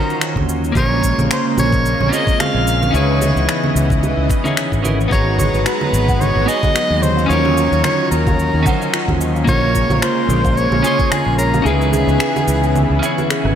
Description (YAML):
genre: sunset chillout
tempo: 110 BPM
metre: 4/4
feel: swing 56% on 16ths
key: unclear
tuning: A4 = 440 Hz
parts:
  - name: bright soprano saxophone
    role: melody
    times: 0.0-13.3 s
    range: G#4 to E#5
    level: -20 LUFS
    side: equal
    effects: diffuse ambient delay
  - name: clean electric guitar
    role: accompaniment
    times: 0.0-13.6 s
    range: F#3 to B#5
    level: -21 LUFS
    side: equal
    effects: auto-pan, diffuse ambient delay
  - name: lush unison pad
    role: sustained chords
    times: 0.0-13.6 s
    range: C#3 to A#5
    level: -22 LUFS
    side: equal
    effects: chorus
  - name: electronic cabasa, finger snaps, congas and rim click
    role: drums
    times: 0.1-13.5 s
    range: none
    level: -22 LUFS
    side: right 2 dB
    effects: overdrive
  - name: fretless electric bass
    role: bass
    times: 0.4-13.6 s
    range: G#1 to D#2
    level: -18 LUFS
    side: equal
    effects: none
  - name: electronic kick drum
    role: drums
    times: 0.4-11.1 s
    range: none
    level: -19 LUFS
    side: equal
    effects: none
  - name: buzzing kalimba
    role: arpeggios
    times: 5.1-13.4 s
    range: E#4 to B5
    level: -26 LUFS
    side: equal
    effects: diffuse ambient delay
room: moderate plate reverb, RT60 1.8 s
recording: dreamy mix soaked in reverb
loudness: -13 LUFS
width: side -9 dB against mid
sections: 0.0-13.6 A section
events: kick drops out 11.7-13.6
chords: 0.0 D#m9; 0.8 A#m9; 2.9 C#m9; 5.1 G#m9; 7.0 D#m9; 9.5 A#m9; 11.7 C#m9